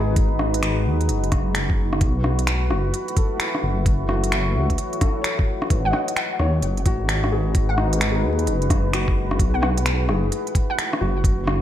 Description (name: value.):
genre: future garage.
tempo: 130 BPM.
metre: 4/4.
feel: swing 64% on 16ths.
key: G# phrygian.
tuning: A4 = 444 Hz.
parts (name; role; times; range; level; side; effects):
felt-muted upright piano; accompaniment; 0.0-11.6 s; D#4 to D#5; -30 LUFS; left 4 dB; sidechain pumping, ping-pong delay.
deep dark ambient pad; sustained chords; 0.0-11.6 s; G#3 to C#5; -27 LUFS; equal; chorus, built-in reverb, sidechain pumping.
dark detuned saw bass; bass; 0.0-11.6 s; F#1 to D#2; -22 LUFS; equal; sidechain pumping.
electronic kick drum; drums; 0.2-11.4 s; none; -20 LUFS; equal; none.
organic electronic drum kit; drums; 0.2-11.6 s; finger snaps, hi-hat, rim click; -26 LUFS; equal; none.
hollow square pluck; melody; 5.9-11.3 s; F#5; -29 LUFS; equal; ensemble chorus, ping-pong delay.
room: light reverb.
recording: vinyl crackle.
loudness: -19 LUFS.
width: side -11 dB against mid.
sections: 0.0-11.6 A section.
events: none.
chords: 0.0 G#m7; 2.0 B7sus4; 3.9 F#m7; 5.7 G#m7; 9.4 B7sus4.